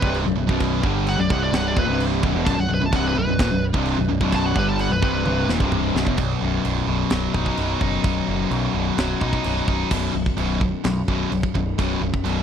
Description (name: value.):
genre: heavy metal.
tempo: 129 BPM.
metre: 4/4.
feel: straight.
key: unclear.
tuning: A4 = 442 Hz.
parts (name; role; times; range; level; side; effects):
high-gain lead guitar; melody; 0.0-5.5 s; B4 to A5; -27 LUFS; right 1 dB; distortion, tape echo.
distorted electric guitar; riff; 0.0-6.2 s; B1 to G3; -27 LUFS; right 2 dB; distortion.
heavy high-gain guitar; riff; 0.0-12.4 s; B1 to D#4; -26 LUFS; right 14 dB; distortion.
sludgy distorted guitar; riff; 0.0-12.4 s; B1 to D#4; -24 LUFS; left 10 dB; overdrive.
growling picked electric bass; bass; 0.0-12.4 s; B0 to B1; -26 LUFS; right 1 dB; overdrive.
tight metal drum kit; drums; 0.0-12.4 s; china cymbal, crash cymbal, kick drum, snare drum, toms; -26 LUFS; right 1 dB; none.
room: little or no reverb.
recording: dry, close 1970s-style studio recording.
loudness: -19 LUFS.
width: side -8 dB against mid.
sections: 0.0-6.2 A section; 6.2-9.9 B section; 9.9-12.4 C section.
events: lead electric guitar solo 0.0-6.2; drum fill 5.3-6.2.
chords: 0.0 B; 9.9 B5.